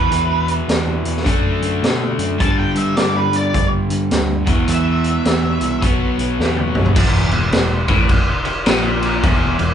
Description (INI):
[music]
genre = blues rock power trio and southern rock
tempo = 105 BPM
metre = 4/4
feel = swing 63% on 8ths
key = E minor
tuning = A4 = 438 Hz
[part]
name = octave-fuzz lead guitar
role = melody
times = 0.0-5.8 s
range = B4 to A5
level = -21 LUFS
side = right 3 dB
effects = distortion
[part]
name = overdriven electric guitar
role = riff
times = 0.0-9.7 s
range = E2 to D4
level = -20 LUFS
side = left 1 dB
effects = none
[part]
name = bell-like tine electric piano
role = bass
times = 0.0-9.7 s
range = E1 to B2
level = -21 LUFS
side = equal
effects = none
[part]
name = raw garage drum kit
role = drums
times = 0.1-9.7 s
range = crash cymbal, hi-hat, kick drum, snare drum, toms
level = -18 LUFS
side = equal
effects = none
[part]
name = overdriven tonewheel organ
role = sustained chords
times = 7.0-9.7 s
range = E4 to E5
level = -28 LUFS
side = right 4 dB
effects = slow rotary speaker
[sound]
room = light reverb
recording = band playing live in one room, nothing above 10.5 kHz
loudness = -14 LUFS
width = side -9 dB against mid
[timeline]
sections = 0.0-7.0 A section; 7.0-9.7 B section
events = drum fill 6.4-7.0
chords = 0.0 E5; 1.3 D/F#; 2.4 G5; 4.4 E5; 5.8 B5; 7.0 Em